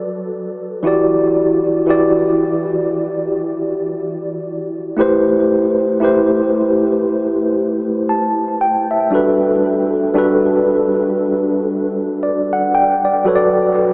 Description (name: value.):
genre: R&B.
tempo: 58 BPM.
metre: 4/4.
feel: swing 58% on 16ths.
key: A dorian.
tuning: A4 = 439 Hz.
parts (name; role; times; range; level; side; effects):
mellow tine electric piano; solo; 0.0-13.9 s; E3 to A5; -13 LUFS; equal; medium stereo tremolo, tape echo.
room: wet huge ambient reverb, RT60 8.5 s.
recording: dreamy mix soaked in reverb, AM radio sound.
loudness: -13 LUFS.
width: side -28 dB against mid.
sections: 0.0-13.9 A section.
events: none.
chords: 0.0 Bm7/F#; 0.8 Em9; 5.0 Am9; 9.1 Gmaj9; 13.3 Bm7/F#.